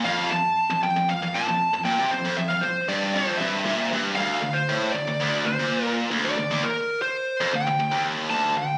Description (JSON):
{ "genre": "metal", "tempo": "116 BPM", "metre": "4/4", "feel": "straight", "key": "unclear", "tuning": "A4 = 440 Hz", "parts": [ { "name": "high-gain lead guitar", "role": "melody", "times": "0.0-8.8 s", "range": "Bb4 to A5", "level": "-26 LUFS", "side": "equal", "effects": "distortion" }, { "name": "tight distorted guitar", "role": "riff", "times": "0.0-8.8 s", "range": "D2 to C3", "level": "-27 LUFS", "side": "equal", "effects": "distortion" } ], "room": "moderate studio reverb, RT60 0.8 s", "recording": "recorded on a phone in the room, club reverb, compression", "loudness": "-24 LUFS", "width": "mono", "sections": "0.0-4.2 A section; 4.2-8.8 B section", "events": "none", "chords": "0.1 F5; 4.2 N.C." }